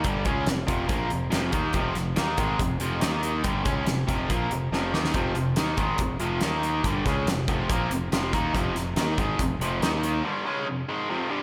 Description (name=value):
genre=hard rock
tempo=141 BPM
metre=4/4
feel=straight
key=F minor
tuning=A4 = 441 Hz
part: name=overdriven electric guitar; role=riff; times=0.0-11.4 s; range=F2 to Eb4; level=-29 LUFS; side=equal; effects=slapback echo
part: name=fuzz fingered electric bass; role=bass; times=0.0-10.2 s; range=F1 to Eb2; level=-33 LUFS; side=equal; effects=overdrive
part: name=big rock drum kit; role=drums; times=0.0-10.1 s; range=hi-hat, kick drum, snare drum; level=-31 LUFS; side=equal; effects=none
room=moderate lush hall reverb, RT60 2.1 s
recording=big arena sound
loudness=-26 LUFS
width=mono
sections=0.0-11.4 A section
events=drum fill 4.7-5.1; break 10.2-11.4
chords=0.0 Fm; 3.0 Eb5; 3.4 Fm; 6.4 Eb5; 6.8 Fm; 9.8 Eb5; 10.2 Fm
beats=| 0.05 0.47 0.90 1.32 | 1.75 2.17 2.60 3.02 | 3.45 3.87 4.30 4.72 | 5.15 5.57 6.00 6.42 | 6.85 7.27 7.70 8.12 | 8.55 8.97 9.40 9.82 | 10.25 10.67 11.10